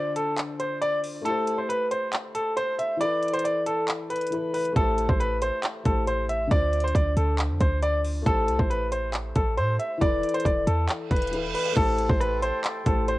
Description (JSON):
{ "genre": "hip hop, trap", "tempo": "137 BPM", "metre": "4/4", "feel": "half-time", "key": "A minor", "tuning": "A4 = 440 Hz", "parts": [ { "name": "clear concert grand piano", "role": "melody", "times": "0.0-13.2 s", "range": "A4 to E5", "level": "-26 LUFS", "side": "equal", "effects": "cassette tape" }, { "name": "felt-muted upright piano", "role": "accompaniment", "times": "0.0-13.2 s", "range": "D3 to C5", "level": "-32 LUFS", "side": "left 3 dB", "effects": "cassette tape" }, { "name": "downlifter and reverse cymbal", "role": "sound effects", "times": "0.0-1.3, 11.1-11.8 s", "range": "none", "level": "-35 LUFS", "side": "right 7 dB", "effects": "none" }, { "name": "trap drum kit", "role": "drums", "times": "0.2-13.2 s", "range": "crash cymbal, handclaps, hi-hat, kick drum, rim click", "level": "-27 LUFS", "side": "equal", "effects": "cassette tape" }, { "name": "clean 808-style bass", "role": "bass", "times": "4.8-13.2 s", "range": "D1 to A2", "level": "-27 LUFS", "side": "equal", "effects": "none" }, { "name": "small flute group", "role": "sustained chords", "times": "11.8-13.2 s", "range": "A4 to C6", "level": "-36 LUFS", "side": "equal", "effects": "cassette tape" } ], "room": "little or no reverb", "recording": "home recording on cassette", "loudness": "-23 LUFS", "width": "side -17 dB against mid", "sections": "0.0-11.8 A section; 11.8-13.2 B section", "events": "break 0.0-4.8; reverse cymbal 11.1-11.8", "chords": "0.0 Dm7; 1.3 Am7; 3.0 Esus4; 4.8 Am7; 6.5 Dm7; 8.3 Am7; 10.0 Esus4; 11.8 Am7" }